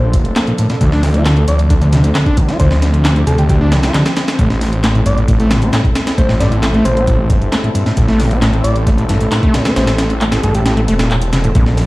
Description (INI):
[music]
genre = breakbeat, breaks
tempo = 134 BPM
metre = 4/4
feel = straight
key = A phrygian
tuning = A4 = 440 Hz
[part]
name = soft struck synth lead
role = melody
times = 0.0-10.7 s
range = G4 to D5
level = -23 LUFS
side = equal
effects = chorus, small speaker sound, dub echo
[part]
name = lush unison pad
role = sustained chords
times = 0.0-11.9 s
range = F3 to A4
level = -22 LUFS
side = left 1 dB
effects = chorus, vintage 12-bit sampler grit, sidechain pumping
[part]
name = detuned saw bass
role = bass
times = 0.0-11.9 s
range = E1 to D2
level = -14 LUFS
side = equal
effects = none
[part]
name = breakbeat sampler-style drum kit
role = drums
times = 0.1-11.9 s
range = hi-hat, kick drum, snare drum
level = -16 LUFS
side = equal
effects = none
[part]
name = house drum kit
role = drums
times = 0.1-11.9 s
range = handclaps, hi-hat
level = -25 LUFS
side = equal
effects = none
[part]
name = overdriven acid bass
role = riff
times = 0.4-11.6 s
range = G2 to F4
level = -16 LUFS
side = equal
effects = distortion, dub echo
[sound]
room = moderate studio reverb, RT60 0.7 s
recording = played on a big sound system in a bare room, large studio reverb, vinyl crackle, lossy compression artefacts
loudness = -11 LUFS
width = side -20 dB against mid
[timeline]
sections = 0.0-11.9 A section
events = none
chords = 0.0 Bbmaj7; 0.8 Dm7; 4.4 Am7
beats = 0.36 | 0.81 1.26 1.70 2.15 | 2.60 3.05 3.50 3.94 | 4.39 4.84 5.29 5.73 | 6.18 6.63 7.08 7.53 | 7.97 8.42 8.87 9.32 | 9.76 10.21 10.66 11.11 | 11.55